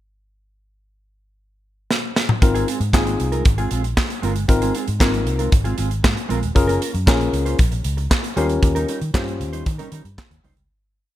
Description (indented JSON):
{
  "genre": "early-eighties boogie funk",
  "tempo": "116 BPM",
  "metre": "4/4",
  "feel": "straight",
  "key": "Ab major",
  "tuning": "A4 = 440 Hz",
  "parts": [
    { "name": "modern studio drum kit", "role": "drums", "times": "1.9-10.7 s", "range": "handclaps, hi-hat, kick drum, snare drum, toms", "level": "-19 LUFS", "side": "equal", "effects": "gated reverb" },
    { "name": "barky tine electric piano", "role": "accompaniment", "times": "2.4-9.6 s", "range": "C4 to C5", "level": "-23 LUFS", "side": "left 4 dB", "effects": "none" },
    { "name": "mellow electric guitar", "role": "riff", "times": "2.4-10.6 s", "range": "G3 to C5", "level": "-28 LUFS", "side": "right 4 dB", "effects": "analog chorus" },
    { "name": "vintage muted fingered electric bass", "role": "bass", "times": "2.4-10.7 s", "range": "Eb1 to Eb3", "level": "-23 LUFS", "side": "equal", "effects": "none" }
  ],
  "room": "small room ambience",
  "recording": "faint mains hum",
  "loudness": "-17 LUFS",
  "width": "side -13 dB against mid",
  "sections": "0.4-2.4 pickup bar; 2.4-10.7 verse",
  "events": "drum fill 1.9-2.4; fade-out 8.6-10.7",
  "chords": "0.4 N.C.; 2.4 Ab6; 6.6 Gbmaj7; 8.4 Eb7"
}